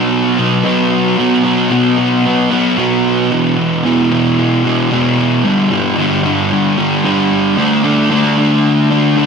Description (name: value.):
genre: rock.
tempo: 113 BPM.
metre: 4/4.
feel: straight.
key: G major.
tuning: A4 = 440 Hz.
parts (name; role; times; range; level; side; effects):
fuzz guitar; solo; 0.0-9.3 s; E2 to D4; -11 LUFS; equal; distortion, wide subtle chorus, tape echo.
room: wet huge ambient reverb, RT60 6.5 s.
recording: dreamy mix soaked in reverb.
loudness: -11 LUFS.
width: side -5 dB against mid.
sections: 0.0-7.6 A section; 7.6-9.3 A section.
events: none.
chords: 0.0 B5; 3.3 E5; 5.4 G5; 7.6 D5.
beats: 0.12 0.65 | 1.19 1.72 2.25 2.79 | 3.32 3.85 4.38 4.92 | 5.45 5.98 6.51 7.05 | 7.58 8.11 8.64 9.18.